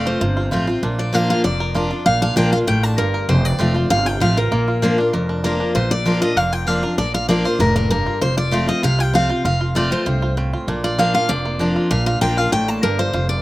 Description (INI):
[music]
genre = bluegrass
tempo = 195 BPM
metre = 4/4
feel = straight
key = Bb major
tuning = A4 = 440 Hz
[part]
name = bluegrass banjo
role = melody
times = 0.0-13.4 s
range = F3 to Bb4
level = -27 LUFS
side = right 3 dB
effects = slapback echo
[part]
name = picked steel-string acoustic guitar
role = melody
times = 0.0-13.4 s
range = Bb4 to A5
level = -20 LUFS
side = left 1 dB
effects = none
[part]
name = picked steel-string acoustic guitar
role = accompaniment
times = 0.0-13.4 s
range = F2 to F4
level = -20 LUFS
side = equal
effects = none
[part]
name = upright bass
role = bass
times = 0.0-13.4 s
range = F1 to C2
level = -22 LUFS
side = equal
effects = none
[sound]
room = little or no reverb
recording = recorded outdoors, with no room sound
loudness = -16 LUFS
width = side -17 dB against mid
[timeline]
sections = 0.0-5.8 A section; 5.8-13.4 A section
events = none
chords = 0.0 F; 0.8 Bb; 3.3 F; 4.5 Bb; 8.2 F; 10.7 Bb